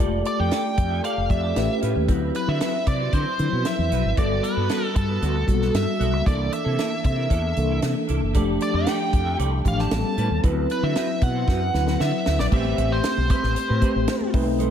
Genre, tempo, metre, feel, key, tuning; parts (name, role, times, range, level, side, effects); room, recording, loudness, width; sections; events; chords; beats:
polished 1980s jazz-funk pop; 115 BPM; 4/4; straight; A4 = 440 Hz
mellow tine electric piano; accompaniment; 0.0-14.7 s; E3 to D5; -25 LUFS; left 2 dB; medium stereo tremolo, lush chorus
semi-hollow electric guitar; riff; 0.0-14.7 s; Bb3 to E5; -33 LUFS; right 5 dB; ensemble chorus
mellow fretless electric bass; bass; 0.0-14.7 s; F1 to D3; -24 LUFS; equal
nasal lead guitar with a parked wah; melody; 0.3-14.3 s; A4 to A5; -27 LUFS; equal; overdrive, diffuse ambient delay
tight funk drum kit; drums; 0.3-14.7 s; crash cymbal, hi-hat, kick drum, snare drum; -25 LUFS; equal
congas; percussion; 12.5-14.7 s; -35 LUFS; right 10 dB
moderate plate reverb, RT60 1.9 s, studio ambience; dreamy mix soaked in reverb; -20 LUFS; side -9 dB against mid
0.0-12.5 A section; 12.5-14.7 B section
drum fill 11.5-12.5
0.0 F69; 1.6 A9; 2.1 D13; 4.2 Gmaj9; 6.3 C13; 8.3 F69; 9.9 A9; 10.4 D13; 12.5 Am9
0.52 1.04 1.56 | 2.08 2.61 3.13 3.65 | 4.17 4.70 5.22 5.74 | 6.26 6.78 7.30 7.83 | 8.35 8.87 9.39 9.91 | 10.43 10.96 11.48 12.00 | 12.52 13.04 13.56 14.08 | 14.60